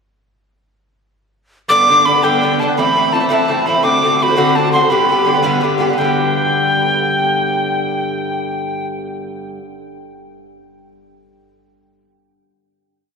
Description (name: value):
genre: celtic folk, Celtic jig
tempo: 112 BPM (dotted quarters)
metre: 6/8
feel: straight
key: G major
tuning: A4 = 440 Hz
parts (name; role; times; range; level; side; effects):
- breathy bright mid whistle; melody; 1.7-8.9 s; G5 to D6; -15 LUFS; right 1 dB; none
- Irish bouzouki; accompaniment; 1.7-9.6 s; G2 to G4; -16 LUFS; left 1 dB; none
room: wet cathedral reverb, RT60 4.7 s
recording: recorded in a church or concert hall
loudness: -12 LUFS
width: side -5 dB against mid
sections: 1.7-6.0 A section; 6.0-8.1 final chord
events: none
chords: 1.7 G; 2.8 Am; 3.8 D7; 4.9 G